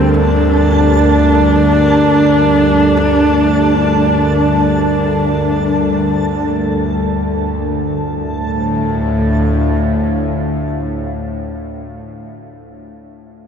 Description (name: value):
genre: dark ambient drone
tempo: free time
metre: none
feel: none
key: D minor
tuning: A4 = 440 Hz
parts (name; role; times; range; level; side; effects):
- warm horsehead fiddle; melody; 0.0-6.5 s; C4 to D4; -15 LUFS; equal; ping-pong delay
- deep dark ambient pad; sustained chords; 0.0-11.8 s; D3 to F5; -17 LUFS; equal; chorus, built-in reverb
- bowed-like drone; drone; 0.0-11.2 s; D2 to A2; -17 LUFS; equal; built-in reverb
- backwards swelling texture; texture; 0.0-7.8 s; A5; -23 LUFS; right 3 dB; built-in reverb
room: wet huge ambient reverb, RT60 7.3 s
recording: dark, warm production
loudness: -11 LUFS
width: side -7 dB against mid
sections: 0.0-7.8 A section; 7.8-12.9 B section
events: none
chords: 0.0 Gm/D; 7.8 Dm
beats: free time